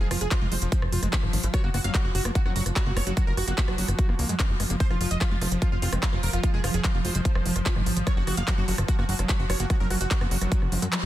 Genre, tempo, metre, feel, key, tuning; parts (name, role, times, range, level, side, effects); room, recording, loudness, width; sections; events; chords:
psychedelic trance; 147 BPM; 4/4; straight; A4 = 443 Hz
supersaw stab; melody; 0.0-11.1 s; F4 to F5; -34 LUFS; right 1 dB; phaser, cassette tape, sidechain pumping, ping-pong delay
resonant blip pluck; second line; 0.0-1.6, 5.8-6.6 s; F3 to C4; -44 LUFS; left 3 dB
swarming drone; sustained chords; 0.1-11.1 s; F3; -34 LUFS; right 2 dB; built-in reverb, sidechain pumping
screaming distorted acid line; riff; 0.0-11.1 s; F3 to Gb4; -34 LUFS; moving between left 6 dB and right 6 dB; distortion, chorus, auto-pan, sidechain pumping, digital delay
plucky analog bass; bass; 0.0-11.1 s; F1 to Gb2; -27 LUFS; equal
techno drum kit; drums; 0.1-11.0 s; handclaps, hi-hat, rim click; -31 LUFS; right 1 dB
electronic kick drum; drums; 0.3-10.6 s; -25 LUFS; equal
little or no reverb; dense, heavily limited modern master; -22 LUFS; side -14 dB against mid
0.0-11.1 A section
0.0 F5; 1.5 Gb5; 4.8 F5; 8.1 Gbmaj7(no3)